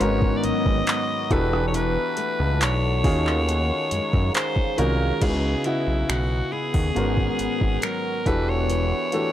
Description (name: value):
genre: contemporary R&B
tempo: 69 BPM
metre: 4/4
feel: straight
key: unclear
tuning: A4 = 441 Hz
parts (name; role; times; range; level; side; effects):
- raspy alto saxophone; melody; 0.0-9.3 s; E4 to D#5; -27 LUFS; equal; none
- warm concert grand piano; accompaniment; 0.0-9.3 s; G#2 to D#5; -27 LUFS; equal; none
- deep dark ambient pad; sustained chords; 0.0-9.3 s; B3 to D#6; -30 LUFS; left 2 dB; chorus, built-in reverb, sidechain pumping
- fingerpicked steel-string acoustic guitar; arpeggios; 0.0-9.3 s; G#2 to F#4; -33 LUFS; left 3 dB; none
- fat analog bass; bass; 0.0-8.9 s; E1 to F#2; -24 LUFS; equal; none
- smooth R&B drum kit; drums; 0.0-9.3 s; crash cymbal, finger snaps, handclaps, hi-hat, kick drum, rim click; -25 LUFS; equal; none
room: digital ambience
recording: dry, gritty hardware recording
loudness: -20 LUFS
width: side -12 dB against mid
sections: 0.0-5.2 A section; 5.2-9.3 B section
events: none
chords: 0.0 G#m11; 1.3 Em11; 3.0 D#m11; 5.2 C#m11; 7.0 G#m11; 8.3 Em11